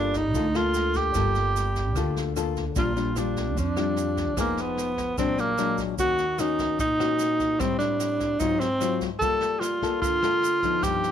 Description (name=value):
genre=bossa nova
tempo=149 BPM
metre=4/4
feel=straight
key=Bb major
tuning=A4 = 440 Hz
part: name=breathy tenor saxophone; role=melody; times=0.0-11.1 s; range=Bb3 to A4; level=-25 LUFS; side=right 2 dB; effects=none
part: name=nylon-string guitar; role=accompaniment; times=0.0-11.1 s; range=G2 to A4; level=-29 LUFS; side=left 10 dB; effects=none
part: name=upright bass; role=bass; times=0.0-11.1 s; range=F1 to F2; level=-30 LUFS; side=right 2 dB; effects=none
part: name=jazz brush drum kit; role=drums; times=0.1-11.1 s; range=kick drum, rim click, snare drum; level=-34 LUFS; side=right 2 dB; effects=none
part: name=tube shaker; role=percussion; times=0.1-11.1 s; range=none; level=-42 LUFS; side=right 19 dB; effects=none
room=light reverb, studio reverb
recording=1960s-style stereo with parts hard left and right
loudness=-22 LUFS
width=side -9 dB against mid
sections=0.0-2.8 A section; 2.8-11.1 B section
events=none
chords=0.0 Gm9; 2.8 Bb6; 4.4 Fm7b5; 5.2 Bb7b13; 6.0 Ebm7; 7.6 Am7; 8.4 Ab6; 9.2 Gm9